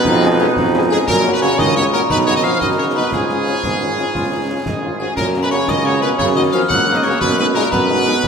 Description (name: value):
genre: military-style march for wind band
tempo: 117 BPM (dotted quarters)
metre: 6/8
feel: straight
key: F# major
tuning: A4 = 440 Hz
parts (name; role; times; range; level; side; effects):
- bright trumpet section; melody; 0.0-8.3 s; G#4 to F#5; -20 LUFS; equal; none
- glockenspiel with brass mallets; second line; 0.0-8.3 s; G#5 to F#6; -21 LUFS; left 3 dB; none
- warm euphonium; second line; 0.0-8.3 s; G#2 to F#3; -21 LUFS; right 3 dB; none
- warm trombone section; sustained chords; 0.1-8.3 s; A#3 to F#4; -23 LUFS; right 2 dB; none
- clear tuba; bass; 0.1-8.3 s; G#1 to F#2; -20 LUFS; right 2 dB; none
- concert snare drum, concert bass drum and clash cymbals; drums; 0.1-8.3 s; none; -26 LUFS; left 1 dB; none
- clear French horn section; accompaniment; 0.2-8.1 s; F#3 to G#4; -24 LUFS; left 6 dB; none
room: wet scoring stage reverb, RT60 1.9 s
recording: none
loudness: -14 LUFS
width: side -6 dB against mid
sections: 0.0-8.3 A section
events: none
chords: 0.1 C#7/E#; 1.1 F#; 2.1 B; 3.1 C#; 5.2 F#; 7.2 G#m7/F#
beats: | 0.06 0.57 | 1.08 1.59 | 2.10 2.61 | 3.12 3.64 | 4.15 4.66 | 5.17 5.68 | 6.19 6.70 | 7.22 7.73 | 8.24